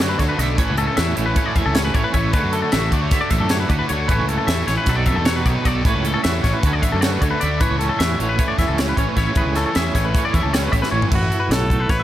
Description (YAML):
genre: math rock and midwest emo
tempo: 308 BPM (eighths)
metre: 9/8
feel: straight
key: A major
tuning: A4 = 443 Hz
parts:
  - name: twangy electric guitar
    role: accompaniment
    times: 0.0-12.0 s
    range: A2 to E5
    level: -26 LUFS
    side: right 5 dB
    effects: tremolo
  - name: twangy electric guitar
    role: arpeggios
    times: 0.0-12.0 s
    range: A4 to E5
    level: -24 LUFS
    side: left 5 dB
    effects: spring reverb
  - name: cranked stack guitar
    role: riff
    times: 0.0-11.1 s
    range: A2 to A4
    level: -24 LUFS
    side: right 2 dB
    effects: overdrive
  - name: fuzz fingered electric bass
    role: bass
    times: 0.0-12.0 s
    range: A1 to F#2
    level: -22 LUFS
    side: equal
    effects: overdrive
  - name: crisp fusion drum kit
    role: drums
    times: 0.0-12.0 s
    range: crash cymbal, hi-hat, kick drum, snare drum, toms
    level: -21 LUFS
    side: equal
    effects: none
  - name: brilliant trumpet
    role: melody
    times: 11.1-12.0 s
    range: F#4 to B4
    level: -23 LUFS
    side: equal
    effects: none
room: light reverb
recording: none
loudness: -16 LUFS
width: side -12 dB against mid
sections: 0.0-11.1 A section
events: drum fill 10.8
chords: 0.0 A6; 4.9 B7sus4; 5.9 A6; 9.4 Amaj7; 11.1 F#m7/A